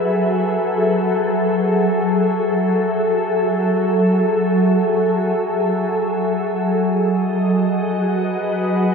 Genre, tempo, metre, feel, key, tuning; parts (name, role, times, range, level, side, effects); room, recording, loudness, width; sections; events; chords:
ambient; free time; F# dorian; A4 = 440 Hz
glassy FM pad; solo; 0.0-8.9 s; F#3 to E5; -16 LUFS; equal; ensemble chorus, built-in reverb, tape echo
wet cathedral reverb, RT60 5.8 s; -16 LUFS; side -5 dB against mid
0.0-8.9 A section
0.0 F#m7; 6.6 B/F#